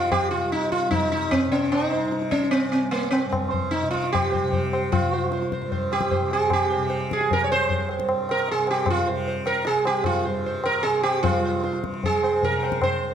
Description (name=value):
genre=indian classical, Hindustani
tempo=151 BPM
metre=4/4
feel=straight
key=C raga bhairavi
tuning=A4 = 438 Hz
part: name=sitar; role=melody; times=0.0-13.1 s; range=Bb3 to Db5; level=-22 LUFS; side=right 2 dB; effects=none
part: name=tanpura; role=drone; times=0.0-13.1 s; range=C2 to C3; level=-31 LUFS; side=left 1 dB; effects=none
part: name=tabla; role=percussion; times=0.1-13.0 s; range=none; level=-28 LUFS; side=left 3 dB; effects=none
room=moderate recital hall reverb, RT60 1.4 s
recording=none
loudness=-21 LUFS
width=side -8 dB against mid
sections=0.0-11.2 A section; 11.2-13.1 B section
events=none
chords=none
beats=| 0.12 0.53 0.93 1.33 | 1.73 2.13 2.52 2.92 | 3.32 3.72 4.12 4.52 | 4.92 5.31 5.71 6.11 | 6.50 6.90 7.30 7.69 | 8.09 8.48 8.88 9.27 | 9.67 10.06 10.46 10.85 | 11.24 11.63 12.03 12.42 | 12.81